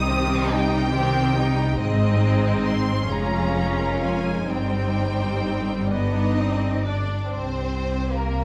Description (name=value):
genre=classical, slow romantic movement for string orchestra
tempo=42-48 BPM (dotted quarters)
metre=6/8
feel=rubato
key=C minor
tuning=A4 = 441 Hz
part: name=clear studio violin section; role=melody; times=0.0-8.4 s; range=Bb4 to Eb6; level=-32 LUFS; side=equal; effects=none
part: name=rich chamber violin section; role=second line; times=0.0-8.4 s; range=Bb3 to Eb5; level=-32 LUFS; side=equal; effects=none
part: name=rich symphonic viola section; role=accompaniment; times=0.0-7.3 s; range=Eb3 to Eb4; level=-29 LUFS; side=equal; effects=none
part: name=rich chamber cello section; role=bass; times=0.0-8.4 s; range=F2 to C3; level=-28 LUFS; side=equal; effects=none
part: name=rich chamber double bass section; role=bass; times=0.0-8.4 s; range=F1 to C2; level=-29 LUFS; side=equal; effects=none
room=wet recital hall reverb, RT60 1.5 s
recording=vinyl crackle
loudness=-23 LUFS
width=mono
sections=0.0-7.3 A section; 7.3-8.4 B section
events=none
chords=0.0 Cm; 1.8 Ab; 3.1 Db/F; 4.5 Cm/G; 5.9 G; 7.3 C5